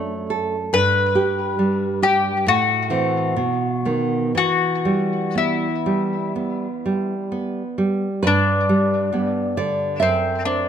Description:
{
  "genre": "romantic duo for mandolin and classical guitar",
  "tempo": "59-70 BPM",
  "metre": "4/4",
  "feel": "rubato",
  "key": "E minor",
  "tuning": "A4 = 437 Hz",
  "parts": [
    { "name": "mandolin", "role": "melody", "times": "0.0-10.7 s", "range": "C4 to B4", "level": "-21 LUFS", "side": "left 5 dB", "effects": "tape echo" },
    { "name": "nylon-string guitar", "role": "accompaniment", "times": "0.0-10.7 s", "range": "F#2 to E5", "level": "-20 LUFS", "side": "right 3 dB", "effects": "none" }
  ],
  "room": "light reverb",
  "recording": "close, detailed microphones",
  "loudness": "-18 LUFS",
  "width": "side -8 dB against mid",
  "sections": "0.0-8.3 A section; 8.3-10.7 B section",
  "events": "none",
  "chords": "0.0 D/F#; 0.7 N.C.; 2.5 Am; 3.4 B; 4.4 Em; 8.3 G; 10.0 D7/F#",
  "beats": "| 0.73 1.59 2.48 3.39 | 4.37 5.37 6.37 7.33 | 8.26 9.15 10.02"
}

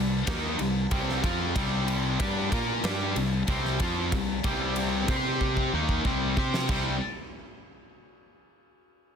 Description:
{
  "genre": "hard rock",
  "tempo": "94 BPM",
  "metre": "4/4",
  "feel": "straight",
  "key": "C minor",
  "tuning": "A4 = 440 Hz",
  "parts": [
    { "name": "crunchy overdriven guitar", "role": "riff", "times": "0.0-7.0 s", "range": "C3 to C5", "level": "-31 LUFS", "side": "left 11 dB", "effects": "none" },
    { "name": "distorted electric guitar", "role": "riff", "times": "0.0-7.0 s", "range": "C3 to C5", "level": "-32 LUFS", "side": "right 13 dB", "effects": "overdrive" },
    { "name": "heavy high-gain guitar", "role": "riff", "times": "0.0-7.0 s", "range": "C3 to C5", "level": "-32 LUFS", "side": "left 1 dB", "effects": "distortion" },
    { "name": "fuzz fingered electric bass", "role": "bass", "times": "0.0-7.0 s", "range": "C2 to C3", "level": "-32 LUFS", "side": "right 1 dB", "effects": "overdrive" },
    { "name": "big rock drum kit", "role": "drums", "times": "0.3-6.8 s", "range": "crash cymbal, kick drum, ride cymbal, snare drum", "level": "-31 LUFS", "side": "equal", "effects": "none" }
  ],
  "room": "light reverb",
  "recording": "dense, heavily limited modern master",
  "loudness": "-25 LUFS",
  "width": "side -7 dB against mid",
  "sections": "0.0-6.7 A section; 6.7-9.2 B section",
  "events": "drum fill 5.4-6.7",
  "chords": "0.0 Cm; 6.7 C5",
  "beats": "0.27 0.92 | 1.56 2.20 2.84 3.48 | 4.12 4.76 5.41 6.05 | 6.69"
}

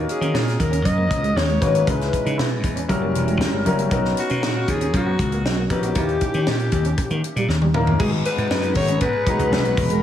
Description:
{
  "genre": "polished 1980s jazz-funk pop",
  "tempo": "118 BPM",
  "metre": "4/4",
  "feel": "straight",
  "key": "G# minor",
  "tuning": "A4 = 442 Hz",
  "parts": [
    { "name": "warm grand piano", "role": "accompaniment", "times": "0.0-10.0 s", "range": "G3 to C#5", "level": "-25 LUFS", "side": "left 2 dB", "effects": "lush chorus" },
    { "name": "slap bass", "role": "bass", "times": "0.0-10.0 s", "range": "E1 to D#3", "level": "-22 LUFS", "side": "equal", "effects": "none" },
    { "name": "breathy alto saxophone", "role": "melody", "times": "0.1-10.0 s", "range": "F#4 to D#5", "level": "-25 LUFS", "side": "left 2 dB", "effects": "digital delay" },
    { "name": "clean electric guitar", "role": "riff", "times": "0.1-10.0 s", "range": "G3 to E4", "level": "-30 LUFS", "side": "right 5 dB", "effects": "lush chorus" },
    { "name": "tight funk drum kit", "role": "drums", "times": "0.1-10.0 s", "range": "crash cymbal, hi-hat, kick drum, snare drum, toms", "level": "-25 LUFS", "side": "equal", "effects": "gated reverb" },
    { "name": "chorused pulse-width pad", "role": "sustained chords", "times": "8.0-10.0 s", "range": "F#5 to B5", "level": "-30 LUFS", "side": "left 1 dB", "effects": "none" },
    { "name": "congas", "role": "percussion", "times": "8.0-9.9 s", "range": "none", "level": "-34 LUFS", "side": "left 6 dB", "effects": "none" }
  ],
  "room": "light reverb, studio reverb",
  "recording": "small room ambience",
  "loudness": "-18 LUFS",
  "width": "side -10 dB against mid",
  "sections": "0.0-8.0 A section; 8.0-10.0 B section",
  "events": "drum fill 7.5-8.0",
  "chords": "0.0 D#m7; 1.9 C#m7; 2.9 F#7b9; 3.9 Bmaj9; 6.0 D#7b9; 8.0 G#m9",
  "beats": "0.34 0.85 1.36 | 1.87 2.38 2.89 3.40 | 3.92 4.43 4.94 5.45 | 5.96 6.47 6.98 7.49 | 8.00 8.51 9.02 9.53"
}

